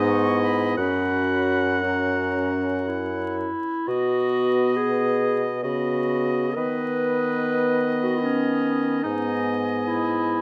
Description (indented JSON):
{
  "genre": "classical, slow romantic movement for wind quintet",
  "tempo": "56-74 BPM",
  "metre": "3/4",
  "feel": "rubato",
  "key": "B major",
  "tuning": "A4 = 440 Hz",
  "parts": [
    { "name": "concert flute", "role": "melody", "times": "0.0-10.4 s", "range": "G#5 to D#6", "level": "-38 LUFS", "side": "equal", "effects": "none" },
    { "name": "bright oboe", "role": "second line", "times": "0.0-10.4 s", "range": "D#5 to F#5", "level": "-31 LUFS", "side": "equal", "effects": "none" },
    { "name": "mellow French horn", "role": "accompaniment", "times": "0.0-10.4 s", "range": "B3 to C#4", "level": "-29 LUFS", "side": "equal", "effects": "none" },
    { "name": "warm clarinet", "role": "accompaniment", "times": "0.0-10.4 s", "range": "C#4 to B4", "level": "-28 LUFS", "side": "equal", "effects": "none" },
    { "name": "warm bassoon", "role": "bass", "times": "0.0-10.4 s", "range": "F#2 to D#3", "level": "-29 LUFS", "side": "equal", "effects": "none" }
  ],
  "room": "moderate recital hall reverb, RT60 1.6 s",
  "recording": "close, detailed microphones, vinyl crackle",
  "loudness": "-23 LUFS",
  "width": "mono",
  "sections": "0.0-3.9 A section; 3.9-10.4 B section",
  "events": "none",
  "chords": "0.0 G#m; 0.8 F#; 3.9 B; 6.6 B/D#; 9.0 G#m",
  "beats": "| 0.77 1.83 2.87 | 3.87 4.76 5.62 | 6.55 7.40 8.21 | 9.04 9.86"
}